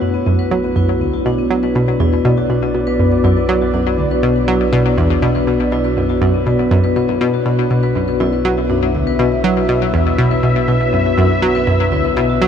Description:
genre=ambient, sequencer-driven space music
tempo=121 BPM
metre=4/4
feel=straight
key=unclear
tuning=A4 = 441 Hz
part: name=sweeping resonant pad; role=sustained chords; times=0.0-12.5 s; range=B3 to F#5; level=-20 LUFS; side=right 2 dB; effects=chorus
part: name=vibraphone with medium mallets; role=arpeggios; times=0.0-12.5 s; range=A3 to B4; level=-19 LUFS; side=moving between left 9 dB and left 1 dB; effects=auto-pan, ping-pong delay
part: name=analog pluck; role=riff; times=0.0-12.5 s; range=D2 to F#3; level=-16 LUFS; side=right 1 dB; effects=chorus, ping-pong delay
part: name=analog drone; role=bass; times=0.5-12.5 s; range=B1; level=-25 LUFS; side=right 1 dB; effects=chorus
room=moderate huge ambient reverb, RT60 8.1 s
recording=cassette tape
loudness=-13 LUFS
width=side -8 dB against mid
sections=0.0-12.5 A section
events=none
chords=0.0 Bm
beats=0.27 0.76 | 1.26 1.75 2.25 2.75 | 3.24 3.74 4.23 4.73 | 5.23 5.72 6.22 6.71 | 7.21 7.71 8.20 8.70 | 9.19 9.69 10.19 10.68 | 11.18 11.67 12.17

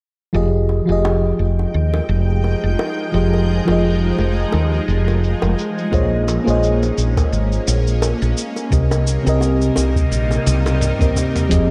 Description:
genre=sunset chillout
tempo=86 BPM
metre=4/4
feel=swing 56% on 16ths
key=F minor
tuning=A4 = 440 Hz
part: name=mellow FM electric piano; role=accompaniment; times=0.3-11.7 s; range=C3 to Eb5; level=-22 LUFS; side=equal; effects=chorus, digital delay
part: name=shimmering ambient pad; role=sustained chords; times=1.7-11.7 s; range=C3 to G5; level=-28 LUFS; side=equal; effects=chorus, built-in reverb, phaser
part: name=woody fretless electric bass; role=bass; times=0.3-11.7 s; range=F1 to Eb2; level=-20 LUFS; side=equal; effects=analog chorus
part: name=dusty soul sampler-style drum kit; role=drums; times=0.3-11.7 s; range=cabasa, hi-hat, toms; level=-29 LUFS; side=equal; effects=low-pass filter on perc, low-pass filter on toms, low-pass filter on hats, low-pass filter on room
part: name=bongos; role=percussion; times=0.7-11.3 s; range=none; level=-31 LUFS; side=equal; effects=none
part: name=electronic kick drum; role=drums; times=5.9-11.7 s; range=none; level=-21 LUFS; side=equal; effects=none
room=moderate lush hall reverb, RT60 2.3 s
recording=dark, warm production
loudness=-18 LUFS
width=mono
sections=0.3-11.5 A section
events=drum fill 10.5-11.5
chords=0.3 Fm9; 5.9 Bbm11; 8.4 Cm7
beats=| 0.35 1.04 1.74 2.44 | 3.14 3.83 4.53 5.23 | 5.93 6.63 7.32 8.02 | 8.72 9.42 10.11 10.81 | 11.51

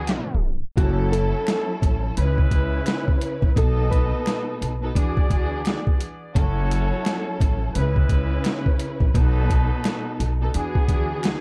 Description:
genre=hip hop, boom-bap hip-hop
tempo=86 BPM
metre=4/4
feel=swing 62% on 16ths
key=F# minor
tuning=A4 = 440 Hz
part: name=dark studio string section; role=accompaniment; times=0.0-11.4 s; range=B2 to B4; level=-31 LUFS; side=equal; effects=cassette tape, high-pass filter, low-pass filter
part: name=clear trumpet section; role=stabs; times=0.0-11.4 s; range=F#3 to D#5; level=-36 LUFS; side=equal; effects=high-pass filter, low-pass filter, delay
part: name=upright bass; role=bass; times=0.0-11.3 s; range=F#1 to E2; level=-26 LUFS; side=equal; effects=none
part: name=boom bap sampler-style drum kit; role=drums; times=0.1-11.4 s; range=hi-hat, kick drum, snare drum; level=-24 LUFS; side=equal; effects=none
part: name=nylon-string guitar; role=melody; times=0.8-5.1 s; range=F#4 to B4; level=-30 LUFS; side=equal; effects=high-pass filter, low-pass filter, delay
part: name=finger snap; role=percussion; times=1.5-11.4 s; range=none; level=-41 LUFS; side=equal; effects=none
room=little or no reverb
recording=dark, warm production, tape stop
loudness=-22 LUFS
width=mono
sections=0.8-11.4 A section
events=tape stop 0.1-0.8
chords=0.0 E9; 0.8 F#m7; 2.2 C#m7; 3.6 B7; 5.0 E9; 6.4 F#m7; 7.7 C#m7; 9.1 B7; 10.5 E9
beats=0.07 | 0.77 1.47 2.17 2.86 | 3.56 4.26 4.96 5.66 | 6.35 7.05 7.75 8.45 | 9.14 9.84 10.54 11.24

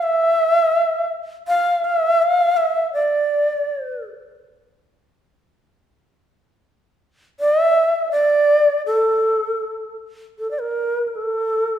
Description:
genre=japanese traditional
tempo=81 BPM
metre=2/4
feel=rubato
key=A miyako bushi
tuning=A4 = 440 Hz
part: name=long shakuhachi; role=solo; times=0.0-4.0, 7.4-11.8 s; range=A4 to F5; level=-16 LUFS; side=equal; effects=none
room=wet recital hall reverb, RT60 1.4 s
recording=recorded in a church or concert hall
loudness=-16 LUFS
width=side -10 dB against mid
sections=0.0-10.4 A section; 10.4-11.8 B section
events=none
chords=none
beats=| 0.04 0.76 | 1.48 2.22 | 2.96 3.70 | 4.46 5.22 | 5.96 6.70 | 7.42 8.14 | 8.87 9.62 | 10.38 11.12

